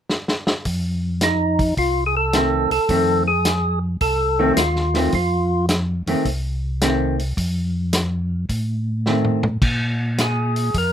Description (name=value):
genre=soul jazz organ trio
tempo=107 BPM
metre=4/4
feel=swing 68% on 8ths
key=F mixolydian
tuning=A4 = 442 Hz
part: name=warm soul drum kit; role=drums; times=0.1-10.9 s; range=crash cymbal, hi-hat, kick drum, snare drum, toms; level=-23 LUFS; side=equal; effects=none
part: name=mellow tonewheel organ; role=bass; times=0.7-10.9 s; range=C2 to Bb2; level=-22 LUFS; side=equal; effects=chorus vibrato, slow rotary speaker
part: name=percussive tonewheel organ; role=melody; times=1.2-5.7, 10.2-10.9 s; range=Eb4 to Bb4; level=-20 LUFS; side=equal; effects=slow rotary speaker
part: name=vintage hollow-body jazz guitar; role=accompaniment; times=2.3-9.4 s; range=Eb3 to C4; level=-20 LUFS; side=equal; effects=none
room=light reverb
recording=close, detailed microphones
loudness=-18 LUFS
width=side -9 dB against mid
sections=0.7-10.9 A section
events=drum fill 0.1-0.7, 9.1-9.6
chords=0.0 N.C.; 0.7 F7; 9.6 Bb5